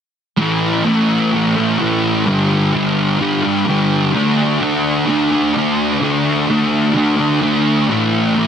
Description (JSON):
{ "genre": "rock", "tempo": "128 BPM", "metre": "4/4", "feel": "straight", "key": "unclear", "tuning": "A4 = 445 Hz", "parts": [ { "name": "thick fuzz guitar", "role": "solo", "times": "0.4-8.5 s", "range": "G2 to D4", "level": "-13 LUFS", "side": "equal", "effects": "distortion, analog chorus, digital delay" } ], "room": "light reverb", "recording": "dense, heavily limited modern master", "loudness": "-13 LUFS", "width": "side -8 dB against mid", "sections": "0.4-8.5 A section", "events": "none", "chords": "0.4 A5; 2.3 G5; 4.1 D5; 7.9 A5" }